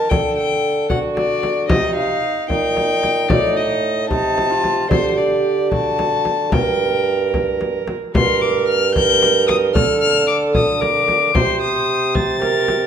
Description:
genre	classical, renaissance-style consort dance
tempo	75 BPM (dotted quarters)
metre	6/8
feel	straight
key	G minor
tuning	A4 = 440 Hz
part	rich violin	melody	0.0-12.9 s	C5 to A6	-19 LUFS	left 6 dB	none
part	warm viola	second line	0.0-12.9 s	Eb4 to C5	-21 LUFS	right 6 dB	none
part	mellow bassoon	bass	0.0-12.9 s	G2 to D3	-20 LUFS	right 2 dB	none
part	frame drum	percussion	0.1-12.9 s	none	-22 LUFS	left 1 dB	none
room	moderate recital hall reverb, RT60 1.5 s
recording	minimal, uncompressed stereo recording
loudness	-15 LUFS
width	side -8 dB against mid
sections	0.0-8.1 A section; 8.1-12.9 A section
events	none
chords	0.1 Dsus4; 1.7 Cm; 3.3 Adim; 4.9 Dsus4; 6.5 Gm; 9.7 D5; 11.3 Cm

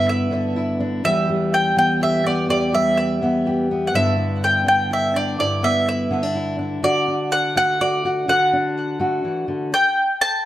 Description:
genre	folk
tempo	124 BPM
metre	3/4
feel	straight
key	G major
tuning	A4 = 440 Hz
part	mandolin	melody	0.0-10.5 s	D5 to A5	-19 LUFS	equal	plate reverb, digital delay
part	fingerpicked steel-string acoustic guitar	accompaniment	0.0-9.7 s	E2 to G4	-21 LUFS	left 1 dB	none
room	moderate large studio reverb, RT60 0.9 s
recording	none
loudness	-17 LUFS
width	side -13 dB against mid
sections	0.0-9.7 A section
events	none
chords	0.0 G6; 1.0 Em; 3.9 G6; 6.8 D; 9.7 N.C.

